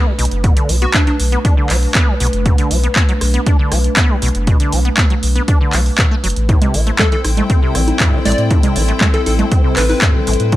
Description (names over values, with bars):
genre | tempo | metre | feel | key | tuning
acid house | 119 BPM | 4/4 | straight | B phrygian | A4 = 439 Hz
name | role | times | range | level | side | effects
dark analog pad | sustained chords | 0.0-10.6 s | G3 to B4 | -23 LUFS | left 1 dB | chorus, phaser, sidechain pumping
deep acid bass | riff | 0.0-10.6 s | G2 to D4 | -22 LUFS | equal | analog chorus, cassette tape, tape echo
warm sub bass | bass | 0.2-10.6 s | F#1 to A2 | -16 LUFS | equal | sidechain pumping
punchy analog drum machine | drums | 0.2-10.6 s | congas, handclaps, hi-hat, rim click | -18 LUFS | right 1 dB | none
electronic kick drum | drums | 0.4-10.6 s | none | -14 LUFS | equal | none
plucky unison lead | melody | 0.8-1.2, 7.0-10.0 s | D4 to D5 | -23 LUFS | equal | tape echo
rich chamber string section | texture | 6.5-10.6 s | E4 to G5 | -25 LUFS | left 2 dB | sidechain pumping
room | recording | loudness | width
digital ambience | none | -12 LUFS | side -15 dB against mid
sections
0.0-10.6 A section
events
none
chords
0.0 Bm7; 6.5 Am7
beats
| 0.44 0.94 1.45 1.95 | 2.46 2.96 3.46 3.97 | 4.47 4.98 5.48 5.99 | 6.49 6.99 7.50 8.00 | 8.51 9.01 9.52 10.02 | 10.52